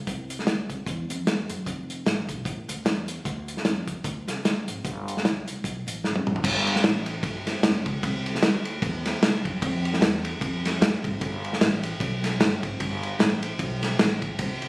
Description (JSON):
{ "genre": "uptempo gospel", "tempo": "151 BPM", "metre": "4/4", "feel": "swing 57% on 8ths", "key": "unclear", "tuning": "A4 = 442 Hz", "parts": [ { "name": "upright bass", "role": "bass", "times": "0.0-14.7 s", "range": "F1 to G2", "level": "-30 LUFS", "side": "equal", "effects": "none" }, { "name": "warm soul drum kit", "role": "drums", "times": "0.1-14.7 s", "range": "crash cymbal, hi-hat, kick drum, ride cymbal, snare drum, toms", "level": "-24 LUFS", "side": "equal", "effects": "none" } ], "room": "wet large studio reverb, RT60 1.2 s", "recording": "recorded on a phone in the room, studio reverb", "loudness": "-23 LUFS", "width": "side -28 dB against mid", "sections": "0.0-6.4 A section; 6.4-14.7 B section", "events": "drum fill 6.0-6.4", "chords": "none" }